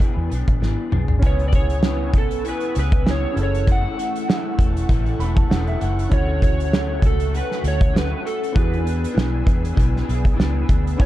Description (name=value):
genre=indie pop, bedroom pop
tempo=98 BPM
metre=4/4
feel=swing 55% on 16ths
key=unclear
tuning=A4 = 439 Hz
part: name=electric slide guitar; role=melody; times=0.0-11.1 s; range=A4 to F#5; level=-28 LUFS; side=right 1 dB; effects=analog chorus, analog delay
part: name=electric guitar through a small old amp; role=accompaniment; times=0.0-11.1 s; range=F#2 to A4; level=-28 LUFS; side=left 2 dB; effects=ensemble chorus, warbly pitch drift
part: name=loose indie drum kit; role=drums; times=0.0-11.1 s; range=hi-hat, kick drum, snare drum, toms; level=-20 LUFS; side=equal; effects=none
part: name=vintage muted fingered electric bass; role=bass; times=0.2-11.1 s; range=E1 to E2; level=-22 LUFS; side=equal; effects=none
part: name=warm upright piano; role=accompaniment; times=1.2-11.1 s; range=B3 to B5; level=-33 LUFS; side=right 2 dB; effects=cassette tape, plate reverb
part: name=warm analog pad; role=sustained chords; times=1.2-11.1 s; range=A3 to E6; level=-35 LUFS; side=left 1 dB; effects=chorus
room=light reverb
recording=dark, warm production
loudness=-17 LUFS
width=side -14 dB against mid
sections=0.0-1.2 A section; 1.2-11.1 B section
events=drum fill 0.6-1.2; upright piano fill 4.9-6.1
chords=0.0 E7; 1.2 C#m7; 3.4 F#m7; 6.1 Dmaj7; 8.6 E7